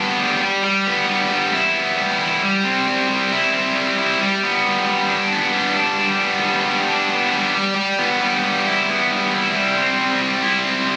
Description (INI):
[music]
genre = rock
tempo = 135 BPM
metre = 4/4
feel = straight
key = unclear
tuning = A4 = 438 Hz
[part]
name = high-gain distorted guitar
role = solo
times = 0.0-11.0 s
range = G3 to E4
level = -18 LUFS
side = equal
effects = distortion, digital delay
[sound]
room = little or no reverb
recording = recorded on a phone in the room, studio reverb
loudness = -18 LUFS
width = mono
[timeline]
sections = 0.0-11.0 A section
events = none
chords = 0.4 Em; 2.4 C; 4.2 G; 7.5 Em; 9.5 C